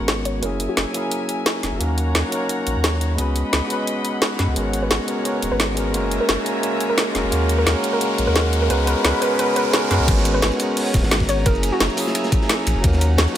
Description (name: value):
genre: liquid drum and bass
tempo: 174 BPM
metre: 4/4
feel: straight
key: G# minor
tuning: A4 = 440 Hz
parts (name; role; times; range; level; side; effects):
- tine electric piano; accompaniment; 0.0-13.4 s; F#3 to B4; -23 LUFS; equal; none
- warm studio string section; sustained chords; 0.0-13.4 s; B3 to B5; -29 LUFS; left 1 dB; sidechain pumping
- warm sub bass; bass; 0.0-13.3 s; D#1 to F#2; -21 LUFS; equal; none
- riser; sound effects; 3.1-10.1 s; none; -32 LUFS; equal; none
- drum and bass drum kit; drums; 0.1-13.3 s; crash cymbal, hi-hat, shaker, snare drum; -23 LUFS; equal; overdrive, studio reverb
- hollow square pluck; melody; 0.3-1.0, 4.8-12.1 s; F#4 to C#5; -26 LUFS; right 1 dB; chorus, digital delay
- crunchy breakbeat drum kit; drums; 10.1-13.4 s; hi-hat, ride cymbal, snare drum; -29 LUFS; equal; high-pass filter on cymbals, studio reverb, high-pass filter on hats, high-pass filter on snare, high-pass filter on room
- electronic kick drum; drums; 10.1-12.9 s; none; -20 LUFS; equal; overdrive, studio reverb
room: light reverb, small room ambience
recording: none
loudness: -17 LUFS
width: side -11 dB against mid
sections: 0.0-10.1 A section; 10.1-13.4 B section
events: build-up 0.0-10.1; filter sweep on synth pluck 0.0-10.1; riser 3.1-10.1; drop 10.1-13.4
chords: 0.4 F#9; 1.8 D#m7; 3.2 C#7sus4; 4.6 G#m11; 5.9 F#9; 7.3 D#m7; 8.7 C#7sus4; 10.1 G#m11; 11.5 F#9; 12.8 D#m7